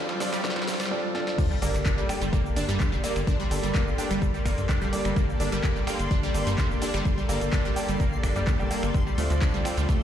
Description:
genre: progressive house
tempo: 127 BPM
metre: 4/4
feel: straight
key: G minor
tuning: A4 = 439 Hz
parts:
  - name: supersaw pad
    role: sustained chords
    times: 0.0-10.0 s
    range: Bb3 to D6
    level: -35 LUFS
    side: left 2 dB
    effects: sidechain pumping
  - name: dark grand piano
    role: stabs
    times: 0.0-9.8 s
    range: Bb3 to G5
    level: -32 LUFS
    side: right 2 dB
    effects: sidechain pumping, ping-pong delay
  - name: riser and sub drop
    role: sound effects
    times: 0.0-3.3 s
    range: none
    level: -34 LUFS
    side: left 1 dB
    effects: none
  - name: backwards swelling texture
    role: texture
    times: 1.6-10.0 s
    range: F5 to C6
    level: -42 LUFS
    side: left 1 dB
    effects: built-in reverb, sidechain pumping
  - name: wide unison pluck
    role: arpeggios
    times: 0.1-10.0 s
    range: G3 to D4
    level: -32 LUFS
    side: right 1 dB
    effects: phaser, sidechain pumping, ping-pong delay
  - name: tight sequencer bass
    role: bass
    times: 0.1-9.9 s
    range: F1 to G2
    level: -28 LUFS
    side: equal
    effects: sidechain pumping, high-pass filter
  - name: deep house drum kit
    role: drums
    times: 0.1-10.0 s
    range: cabasa, crash cymbal, finger snaps, handclaps, hi-hat, snare drum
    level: -35 LUFS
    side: equal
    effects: overdrive, high-pass filter on snare, high-pass filter on hats, high-pass filter on perc, high-pass filter on cymbals, high-pass filter on room
  - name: electronic kick drum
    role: drums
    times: 0.4-10.0 s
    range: none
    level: -26 LUFS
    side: equal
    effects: overdrive, high-pass filter on kick, high-pass filter on room
room: light reverb, digital ambience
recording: played on a big sound system in a bare room, large studio reverb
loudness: -23 LUFS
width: side -10 dB against mid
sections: 0.0-1.4 A section; 1.4-10.0 B section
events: build-up 0.0-1.4; drum fill 0.0-0.9, 1.1; riser 0.0-0.9; drop 1.4-10.0; impact 1.4-3.3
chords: 0.0 Csus2; 1.4 Gmadd9; 8.9 Dm7

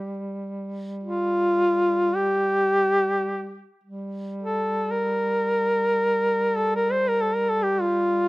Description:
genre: caucasian folk, Caucasian lament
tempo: free time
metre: none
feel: none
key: G minor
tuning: A4 = 440 Hz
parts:
  - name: warm duduk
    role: melody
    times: 0.0-8.3 s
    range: F4 to C5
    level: -21 LUFS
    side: equal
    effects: slapback echo
  - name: mellow duduk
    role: drone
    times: 0.0-8.3 s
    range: G3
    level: -31 LUFS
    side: right 1 dB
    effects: none
room: little or no reverb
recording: recorded outdoors, with no room sound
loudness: -21 LUFS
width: side -21 dB against mid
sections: 0.0-3.8 A section; 3.8-8.3 A section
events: none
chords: none

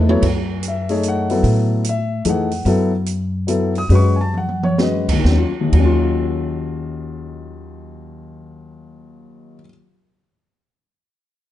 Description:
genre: modal jazz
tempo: 126-148 BPM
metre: 3/4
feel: swing 65% on 8ths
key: unclear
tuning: A4 = 444 Hz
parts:
  - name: warm grand piano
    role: accompaniment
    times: 0.0-9.7 s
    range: Eb2 to Eb6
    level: -20 LUFS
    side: left 3 dB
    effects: none
  - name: upright bass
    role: bass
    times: 0.0-9.6 s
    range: Eb2 to A2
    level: -19 LUFS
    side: equal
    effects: none
  - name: open jazz drum kit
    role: drums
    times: 0.1-5.9 s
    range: crash cymbal, hi-hat, kick drum, snare drum, toms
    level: -23 LUFS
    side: right 2 dB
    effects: none
room: light reverb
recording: nothing above 10.7 kHz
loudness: -16 LUFS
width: side -13 dB against mid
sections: 0.2-5.2 A section; 5.2-8.1 B section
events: drum fill 0.0, 4.3-4.8; slowing down 2.7-5.2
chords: 0.2 Gbm9; 5.2 Ebm9

